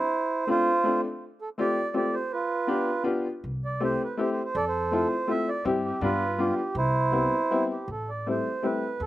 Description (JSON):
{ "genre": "musette waltz", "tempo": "162 BPM", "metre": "3/4", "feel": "straight", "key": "C major", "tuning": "A4 = 436 Hz", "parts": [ { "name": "mellow accordion", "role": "melody", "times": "0.0-9.1 s", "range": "E4 to E5", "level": "-27 LUFS", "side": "right 3 dB", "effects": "slapback echo" }, { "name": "clear upright piano", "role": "accompaniment", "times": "0.5-8.8 s", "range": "G3 to G4", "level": "-27 LUFS", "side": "left 2 dB", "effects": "slapback echo" }, { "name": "upright bass", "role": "bass", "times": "3.4-9.1 s", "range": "A1 to G2", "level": "-32 LUFS", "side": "equal", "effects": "none" } ], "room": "little or no reverb", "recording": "recorded outdoors, with no room sound", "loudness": "-24 LUFS", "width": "side -15 dB against mid", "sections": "0.0-7.9 A section; 7.9-9.1 B section", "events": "none", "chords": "0.1 Dm7; 1.2 Fadd9; 2.3 G7; 3.4 C6; 4.6 Fmaj7; 5.7 C/G; 6.0 G7; 6.8 Cmaj7; 7.9 Am7" }